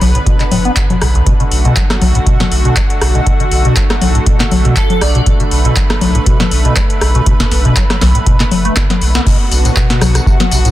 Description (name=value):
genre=acid house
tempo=120 BPM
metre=4/4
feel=swing 54% on 16ths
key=B minor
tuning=A4 = 440 Hz
part: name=lush unison pad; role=sustained chords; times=0.0-10.7 s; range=D3 to B4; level=-19 LUFS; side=right 1 dB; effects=chorus, sidechain pumping
part: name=liquid acid bass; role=riff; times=0.0-10.7 s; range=B1 to B3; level=-16 LUFS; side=equal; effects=phaser, wide subtle chorus, tape echo
part: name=round analog bass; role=bass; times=0.0-10.7 s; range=F#1 to B1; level=-13 LUFS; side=equal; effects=sidechain pumping
part: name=booming analog drum machine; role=drums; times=0.0-10.7 s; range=congas, crash cymbal, handclaps, hi-hat, rim click, snare drum, tambourine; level=-16 LUFS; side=left 3 dB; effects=none
part: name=electronic kick drum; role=drums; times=0.3-10.4 s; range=none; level=-14 LUFS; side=equal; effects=none
part: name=airy dreamy lead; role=melody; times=4.8-5.2 s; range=A4 to D5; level=-21 LUFS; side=right 4 dB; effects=chorus, tape echo
room=light reverb, digital ambience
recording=dense, heavily limited modern master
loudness=-9 LUFS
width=side -14 dB against mid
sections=0.0-9.3 A section; 9.3-10.7 B section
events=drum fill 8.8-9.3; band accent 9.1; drop 9.3-10.7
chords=0.0 Bm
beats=0.27 0.77 | 1.26 1.76 2.27 2.77 | 3.27 3.77 4.26 4.76 | 5.26 5.76 6.26 6.76 | 7.26 7.76 8.27 8.77 | 9.27 9.77 10.27